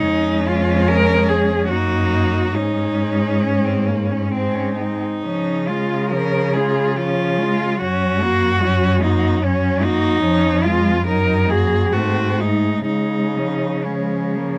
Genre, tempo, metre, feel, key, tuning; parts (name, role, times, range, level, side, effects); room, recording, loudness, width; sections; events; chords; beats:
classical, lyrical piece for cello ensemble; 61-76 BPM; 3/4; rubato; Db major; A4 = 440 Hz
rich cello; melody; 0.0-14.6 s; Bb3 to Bb4; -23 LUFS; equal
warm cello; second line; 0.0-14.6 s; F3 to Gb4; -27 LUFS; equal
warm cello; accompaniment; 0.0-14.6 s; F3 to Bb3; -25 LUFS; equal
warm cello; bass; 0.0-14.6 s; F2 to Db3; -24 LUFS; equal
light reverb; close, detailed microphones; -18 LUFS; mono
0.0-14.6 A section
0.1 Db/F; 1.7 Ebm/Gb; 2.5 Absus4; 5.2 Db; 7.8 Gb; 10.2 Db/F; 11.1 Ebm/Gb; 11.9 Ab7b9; 12.9 Db
| 0.08 0.88 1.70 | 2.55 3.44 4.33 | 5.24 6.11 6.97 | 7.81 8.63 9.44 | 10.23 11.07 11.94 | 12.88 13.87